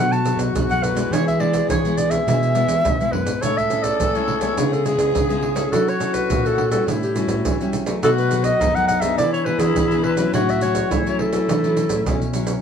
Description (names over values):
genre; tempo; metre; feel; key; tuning
samba and choro; 104 BPM; 4/4; straight; A major; A4 = 440 Hz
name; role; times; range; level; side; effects
mellow clarinet; melody; 0.0-12.4 s; F#4 to A5; -22 LUFS; right 1 dB; none
growling tenor saxophone; second line; 0.0-12.6 s; C#4 to A4; -25 LUFS; left 6 dB; none
nylon-string guitar; accompaniment; 0.0-12.6 s; F#2 to A4; -26 LUFS; left 2 dB; none
nylon-string guitar; bass; 0.0-12.6 s; F#2 to B3; -24 LUFS; equal; none
maracas, pandeiro and surdo; percussion; 0.1-12.6 s; none; -24 LUFS; right 3 dB; none
room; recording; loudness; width
moderate studio ambience, RT60 0.5 s; band playing live in one room; -17 LUFS; side -7 dB against mid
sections
0.0-12.6 A section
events
none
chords
0.0 B7; 1.1 E; 3.4 Amaj7; 4.6 C#m7; 5.7 F#m7; 6.9 A7; 8.0 B7; 9.2 E7; 10.3 A6